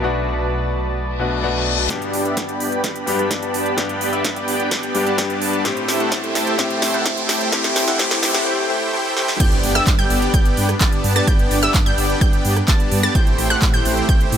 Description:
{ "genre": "EDM, festival progressive house", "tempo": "128 BPM", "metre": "4/4", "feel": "straight", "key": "G major", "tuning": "A4 = 440 Hz", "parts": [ { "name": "bright concert grand piano", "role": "accompaniment", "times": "0.0-9.4 s", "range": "G2 to G4", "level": "-24 LUFS", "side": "left 4 dB", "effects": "sidechain pumping, digital delay" }, { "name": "lush unison pad", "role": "sustained chords", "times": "0.0-14.4 s", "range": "A3 to B5", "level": "-27 LUFS", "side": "equal", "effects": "chorus, vintage 12-bit sampler grit, sidechain pumping" }, { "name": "detuned saw bass", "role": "bass", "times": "0.0-14.4 s", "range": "G1 to A2", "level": "-25 LUFS", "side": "equal", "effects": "sidechain pumping, high-pass filter" }, { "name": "reverse cymbal, riser and impact", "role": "sound effects", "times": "1.2-11.3 s", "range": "none", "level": "-27 LUFS", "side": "equal", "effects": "none" }, { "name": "supersaw chords", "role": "riff", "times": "1.9-14.4 s", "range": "A3 to A5", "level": "-21 LUFS", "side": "right 1 dB", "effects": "sidechain pumping, low-pass filter, digital delay" }, { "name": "big-room dance drum kit", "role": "drums", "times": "1.9-14.4 s", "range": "crash cymbal, handclaps, hi-hat, rim click, snare drum", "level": "-24 LUFS", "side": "right 1 dB", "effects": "high-pass filter on snare, low-pass filter on snare, high-pass filter on hats, low-pass filter on hats, high-pass filter on cymbals, low-pass filter on cymbals, high-pass filter on room, low-pass filter on room" }, { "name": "electronic kick drum", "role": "drums", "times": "1.9-14.2 s", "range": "none", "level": "-18 LUFS", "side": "equal", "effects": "high-pass filter on kick, high-pass filter on room" }, { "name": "wide unison pluck", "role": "arpeggios", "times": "9.4-14.4 s", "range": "E6 to A6", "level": "-24 LUFS", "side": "equal", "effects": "sidechain pumping, digital delay" } ], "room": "light reverb, digital ambience", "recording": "high-pass filter", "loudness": "-16 LUFS", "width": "side -9 dB against mid", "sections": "0.0-1.9 A section; 1.9-9.4 B section; 9.4-14.4 C section", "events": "reverse cymbal 1.2-1.9; build-up 1.9-9.4; drum fill 1.9-8.5, 9.2; riser 1.9-8.5; filter sweep on supersaw synth 1.9-9.4; filter sweep 1.9-9.4; break 8.5-9.4; drop 9.4-14.4; impact 9.4-11.3", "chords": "0.0 Bm7; 1.9 G; 5.7 Am7; 9.4 G; 13.2 Am7" }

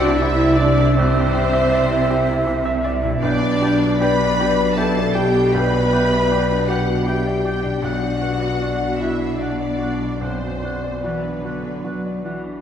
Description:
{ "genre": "cinematic", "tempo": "72-81 BPM", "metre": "3/4", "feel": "rubato", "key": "G major", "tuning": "A4 = 438 Hz", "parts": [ { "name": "clear symphonic violin section", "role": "melody", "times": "0.0-12.2 s", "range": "B4 to B5", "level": "-30 LUFS", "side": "left 3 dB", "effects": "none" }, { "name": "clear clarinet", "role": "second line", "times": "0.0-12.4 s", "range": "D5", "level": "-33 LUFS", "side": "left 2 dB", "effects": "none" }, { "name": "clear symphonic violin section", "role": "second line", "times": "0.0-12.2 s", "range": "B4 to B5", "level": "-30 LUFS", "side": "equal", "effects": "none" }, { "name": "mellow hollow silver concert flute", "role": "second line", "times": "0.0-12.2 s", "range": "B4 to F#5", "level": "-27 LUFS", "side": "left 1 dB", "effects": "none" }, { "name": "warm oboe", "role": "second line", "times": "0.0-12.4 s", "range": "E5 to G5", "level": "-31 LUFS", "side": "right 2 dB", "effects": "none" }, { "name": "bright baby grand piano", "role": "accompaniment", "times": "0.0-12.6 s", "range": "B1 to E5", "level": "-26 LUFS", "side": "equal", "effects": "none" }, { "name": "rich symphonic viola section", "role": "accompaniment", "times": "0.0-12.2 s", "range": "B3 to C5", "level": "-28 LUFS", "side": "right 2 dB", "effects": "none" }, { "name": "dark French horn section", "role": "sustained chords", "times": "0.0-12.2 s", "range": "B3 to B4", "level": "-23 LUFS", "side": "left 2 dB", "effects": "none" }, { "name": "concert harp", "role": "arpeggios", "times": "0.0-11.6 s", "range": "B2 to G4", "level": "-28 LUFS", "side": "left 3 dB", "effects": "none" }, { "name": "clear studio double bass section", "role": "bass", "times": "0.0-12.4 s", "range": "B1 to C2", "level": "-25 LUFS", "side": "right 2 dB", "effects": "none" }, { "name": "rich symphonic cello section", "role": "bass", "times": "0.0-12.6 s", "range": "B2 to F#3", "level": "-25 LUFS", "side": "right 2 dB", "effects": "none" } ], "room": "wet church reverb, RT60 2.5 s", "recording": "none", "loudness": "-17 LUFS", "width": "side -8 dB against mid", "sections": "0.0-12.6 A section", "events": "none", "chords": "0.0 Cadd9; 3.2 G/B; 7.8 Bm" }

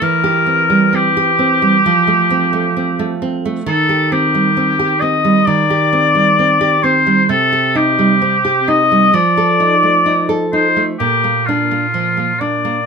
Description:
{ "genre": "romantic duo for oboe and classical guitar", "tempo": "66 BPM", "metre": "4/4", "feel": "rubato", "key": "unclear", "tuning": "A4 = 440 Hz", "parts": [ { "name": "clear oboe", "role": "melody", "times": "0.0-12.9 s", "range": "F4 to Eb5", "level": "-13 LUFS", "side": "left 3 dB", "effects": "none" }, { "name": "nylon-string guitar", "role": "accompaniment", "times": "0.0-12.9 s", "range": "Bb2 to A4", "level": "-16 LUFS", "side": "right 4 dB", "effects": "none" } ], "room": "light reverb", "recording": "minimal, uncompressed stereo recording", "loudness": "-11 LUFS", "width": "side -5 dB against mid", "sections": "0.0-12.9 A section", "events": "none", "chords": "0.0 C7/E; 1.9 F; 3.7 Cm/Eb; 7.3 Cm; 9.1 F7; 11.0 Bb" }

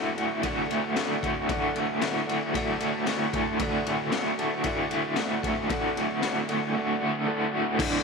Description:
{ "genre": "garage rock duo or trio", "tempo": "114 BPM", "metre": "4/4", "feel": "straight", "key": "D major", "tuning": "A4 = 440 Hz", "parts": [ { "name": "overdriven combo organ", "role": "sustained chords", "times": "0.0-8.0 s", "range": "A4 to A5", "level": "-36 LUFS", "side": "equal", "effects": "none" }, { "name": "crunchy overdriven guitar", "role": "riff", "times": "0.0-8.0 s", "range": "D2 to F#4", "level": "-26 LUFS", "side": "equal", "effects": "tremolo" }, { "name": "raw garage drum kit", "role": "drums", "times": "0.2-7.9 s", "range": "crash cymbal, kick drum, ride cymbal, snare drum", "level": "-33 LUFS", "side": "left 5 dB", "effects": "none" } ], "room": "moderate echo chamber reverb, RT60 2.4 s", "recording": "1960s-style stereo", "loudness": "-25 LUFS", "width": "side -4 dB against mid", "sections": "0.0-7.8 A section", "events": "transistor combo organ fill 2.5-3.6, 7.0-7.8", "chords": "0.0 D" }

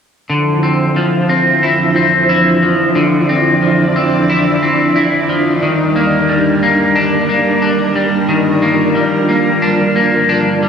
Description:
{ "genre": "dream pop", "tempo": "90 BPM", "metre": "4/4", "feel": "straight", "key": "D minor", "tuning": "A4 = 442 Hz", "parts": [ { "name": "string machine, full ensemble", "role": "sustained chords", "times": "0.3-10.7 s", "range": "Eb3 to D5", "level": "-14 LUFS", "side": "right 1 dB", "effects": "ensemble chorus" }, { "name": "electric guitar at the edge of break-up", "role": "arpeggios", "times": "0.3-10.7 s", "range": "D3 to E4", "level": "-13 LUFS", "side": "left 1 dB", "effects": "lush chorus, analog delay" } ], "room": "wet spring reverb, RT60 2.7 s", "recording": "echo-heavy mix", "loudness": "-10 LUFS", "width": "side -7 dB against mid", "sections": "0.3-10.7 A section", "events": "none", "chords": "0.3 Dm9; 5.6 Ebmaj7" }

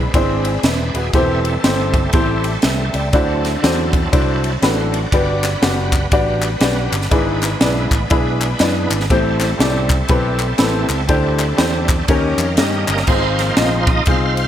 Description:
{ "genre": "uptempo gospel", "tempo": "121 BPM", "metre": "4/4", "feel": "swing 61% on 8ths", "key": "unclear", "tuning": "A4 = 439 Hz", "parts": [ { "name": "bright tonewheel organ", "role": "sustained chords", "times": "0.0-14.5 s", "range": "F3 to B5", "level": "-24 LUFS", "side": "right 2 dB", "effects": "slow rotary speaker, chorus vibrato" }, { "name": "fingered electric bass", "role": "bass", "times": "0.0-14.5 s", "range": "Eb1 to G2", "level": "-21 LUFS", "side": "equal", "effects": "none" }, { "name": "clear upright piano", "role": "accompaniment", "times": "0.1-14.4 s", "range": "G2 to G5", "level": "-19 LUFS", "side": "left 2 dB", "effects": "lush chorus" }, { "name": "crisp fusion drum kit", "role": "drums", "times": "0.1-14.5 s", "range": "crash cymbal, kick drum, ride cymbal, snare drum", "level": "-18 LUFS", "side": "equal", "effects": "gated reverb" }, { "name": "group handclap", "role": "percussion", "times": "5.4-13.0 s", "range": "none", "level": "-26 LUFS", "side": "left 4 dB", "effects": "none" } ], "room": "moderate lush hall reverb, RT60 1.8 s", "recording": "bright 1980s-style digital production", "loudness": "-14 LUFS", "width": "side -10 dB against mid", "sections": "0.0-13.1 A section; 13.1-14.5 A section", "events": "tonewheel organ fill 12.1-13.1; tonewheel organ solo 13.1-14.5", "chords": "0.0 E7b13; 1.1 Am7/E; 3.1 D9; 5.1 Gmaj7; 7.1 E7/G#; 9.1 Am7; 11.1 D9sus4; 12.1 Eb7; 13.1 Ab6" }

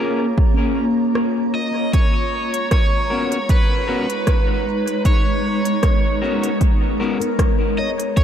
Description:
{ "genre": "ambient dub", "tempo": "77 BPM", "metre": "4/4", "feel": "swing 55% on 16ths", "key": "G# dorian", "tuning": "A4 = 440 Hz", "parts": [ { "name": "granular cloud pad", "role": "sustained chords", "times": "0.0-8.2 s", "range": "G#3 to A#5", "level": "-22 LUFS", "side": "left 1 dB", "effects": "built-in reverb" }, { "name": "handpan", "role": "arpeggios", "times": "0.0-8.2 s", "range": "C#4 to C#5", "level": "-28 LUFS", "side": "left 1 dB", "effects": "analog delay" }, { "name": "electric guitar at the edge of break-up", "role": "stabs", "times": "0.0-7.2 s", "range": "B3 to A#4", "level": "-27 LUFS", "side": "left 3 dB", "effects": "dub echo" }, { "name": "electronic kick drum", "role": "drums", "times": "0.4-8.2 s", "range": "none", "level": "-17 LUFS", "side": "equal", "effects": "overdrive" }, { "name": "organic electronic drum kit", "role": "drums", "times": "1.2-8.2 s", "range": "hi-hat, rim click", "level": "-30 LUFS", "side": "equal", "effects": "dub echo" }, { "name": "overdriven slide guitar", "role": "melody", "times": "1.5-8.2 s", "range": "B4 to D#5", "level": "-24 LUFS", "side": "right 2 dB", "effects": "dub echo" } ], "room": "light reverb", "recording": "none", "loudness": "-16 LUFS", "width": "side -9 dB against mid", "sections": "0.0-1.9 A section; 1.9-8.2 B section", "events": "none", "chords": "0.0 A#m7; 1.9 G#m11" }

